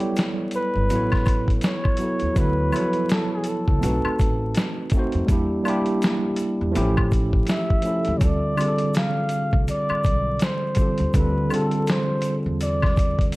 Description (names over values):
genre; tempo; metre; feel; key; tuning
lo-fi hip hop; 82 BPM; 4/4; swing 59% on 16ths; D dorian; A4 = 440 Hz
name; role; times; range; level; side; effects
breathy flugelhorn; melody; 0.0-13.3 s; G4 to F5; -27 LUFS; left 1 dB; analog delay
tine electric piano; accompaniment; 0.0-13.4 s; D3 to D5; -24 LUFS; right 1 dB; medium stereo tremolo
dusty soul sampler-style drum kit; drums; 0.0-13.4 s; hi-hat, kick drum, snare drum; -22 LUFS; equal; none
egg shaker and woodblock; percussion; 0.2-13.4 s; none; -32 LUFS; left 3 dB; none
upright bass; bass; 0.8-13.3 s; G1 to F2; -25 LUFS; equal; none
room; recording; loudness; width
moderate studio reverb, RT60 0.6 s; vinyl crackle; -19 LUFS; side -20 dB against mid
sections
0.0-13.4 A section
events
none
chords
0.0 Em7; 0.9 A69; 2.4 Dmaj9; 3.8 B7b9; 5.3 Em7b5; 6.7 A7b13; 8.2 Dm7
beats
0.16 0.90 1.63 | 2.36 3.09 3.82 4.55 | 5.29 6.02 6.75 7.48 | 8.21 8.94 9.68 10.41 | 11.14 11.87 12.60 13.33